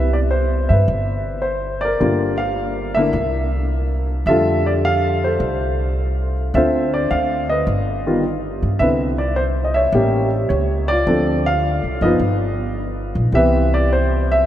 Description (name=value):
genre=jazz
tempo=106 BPM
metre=4/4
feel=swing 69% on 8ths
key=C major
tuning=A4 = 440 Hz
part: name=warm baby grand piano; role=melody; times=0.0-14.5 s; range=C3 to F5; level=-18 LUFS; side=equal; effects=none
part: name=upright bass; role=bass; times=0.0-14.4 s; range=F#1 to G2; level=-20 LUFS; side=equal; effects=none
room=wet cathedral reverb, RT60 6.0 s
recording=in a vast, echoing space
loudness=-16 LUFS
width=side -11 dB against mid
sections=0.0-14.5 A section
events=none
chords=0.0 Cmaj7; 2.0 Gm7; 3.1 C7; 4.3 F69; 6.5 Dm7; 7.7 Gaug; 8.8 Cmaj9; 9.9 A7b9; 11.1 Dm7; 12.2 Gaug; 13.3 Cmaj7